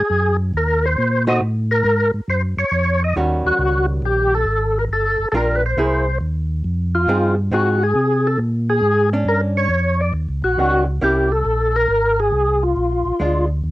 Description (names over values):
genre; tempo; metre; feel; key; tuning
jazz; 137 BPM; 4/4; swing 67% on 8ths; Eb mixolydian; A4 = 439 Hz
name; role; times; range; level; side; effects
percussive tonewheel organ; melody; 0.0-13.5 s; F4 to Eb5; -18 LUFS; equal; slow rotary speaker, overdrive, chorus vibrato
mellow tonewheel organ; bass; 0.0-13.7 s; G1 to C3; -20 LUFS; equal; chorus vibrato, slow rotary speaker
archtop guitar, miked and amplified; accompaniment; 1.3-13.5 s; Eb3 to C5; -21 LUFS; right 1 dB; cassette tape
room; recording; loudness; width
light reverb; home recording on cassette; -16 LUFS; side -17 dB against mid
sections
0.0-13.6 A section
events
none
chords
0.0 Ab7; 1.4 Faug; 3.2 Eb7#9; 4.9 Gm7; 5.8 C7alt; 6.6 Fm7; 8.4 Bb7#9; 10.1 Eb7#9; 11.0 C7b9; 11.9 Ab69; 12.8 Bb7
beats
0.10 0.54 0.97 | 1.41 1.84 2.28 2.72 | 3.15 3.59 4.02 4.46 | 4.90 5.33 5.77 6.21 | 6.64 7.08 7.52 7.95 | 8.39 8.83 9.27 9.70 | 10.14 10.57 11.01 11.45 | 11.88 12.32 12.76 13.20 | 13.63